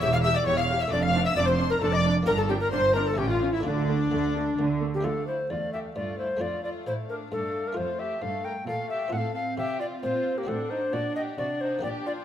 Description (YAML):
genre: classical, baroque-style concerto movement with solo episodes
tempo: 132 BPM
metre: 3/4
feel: straight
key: D minor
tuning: A4 = 440 Hz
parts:
  - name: tenor recorder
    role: melody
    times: 0.0-12.1 s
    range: D4 to G5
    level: -28 LUFS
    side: left 1 dB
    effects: none
  - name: warm chamber violin section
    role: melody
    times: 0.0-12.2 s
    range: D5 to F6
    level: -36 LUFS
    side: left 6 dB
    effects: none
  - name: warm chamber violin section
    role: second line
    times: 0.0-12.2 s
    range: Bb3 to F5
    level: -32 LUFS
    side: left 2 dB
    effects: none
  - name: buff-stop harpsichord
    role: accompaniment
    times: 0.0-12.2 s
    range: D2 to A4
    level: -37 LUFS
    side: equal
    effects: none
  - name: dark chamber viola section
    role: accompaniment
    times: 0.0-12.2 s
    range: A3 to G4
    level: -35 LUFS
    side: right 1 dB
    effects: none
  - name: dark chamber cello section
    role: bass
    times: 0.0-12.2 s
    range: D2 to D3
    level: -33 LUFS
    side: right 4 dB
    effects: none
  - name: rich chamber double bass section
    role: bass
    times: 0.0-5.0 s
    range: E1 to D2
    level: -29 LUFS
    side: right 3 dB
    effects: none
room: moderate recital hall reverb, RT60 1.3 s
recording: none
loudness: -24 LUFS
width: side -10 dB against mid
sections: 0.0-5.0 A section; 5.0-12.2 B section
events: none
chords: 0.0 A7/E; 0.9 Dm/F; 2.3 Gm; 3.2 A; 3.6 Dm; 6.4 Dm/F; 7.8 F; 9.1 F/A; 10.5 D7/A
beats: 0.01 0.46 | 0.92 1.37 1.82 | 2.27 2.73 3.18 | 3.65 4.11 4.58 | 5.05 5.50 5.96 | 6.41 6.87 7.32 | 7.77 8.22 8.68 | 9.13 9.58 10.03 | 10.48 10.93 11.38 | 11.84